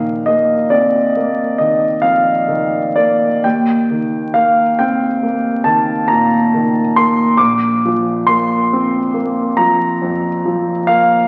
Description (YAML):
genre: classical, impressionist solo piano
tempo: 46 BPM (dotted quarters)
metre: 9/8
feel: rubato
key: Bb major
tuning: A4 = 440 Hz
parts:
  - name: clear grand piano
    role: solo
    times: 0.0-11.3 s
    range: Bb1 to D6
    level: -15 LUFS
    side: equal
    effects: none
room: wet recital hall reverb, RT60 1.5 s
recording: very old 78 rpm record, vinyl crackle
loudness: -15 LUFS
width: mono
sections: 0.0-11.3 A section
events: none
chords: 0.0 F7sus4/Bb; 3.4 Eb; 7.4 Bbadd9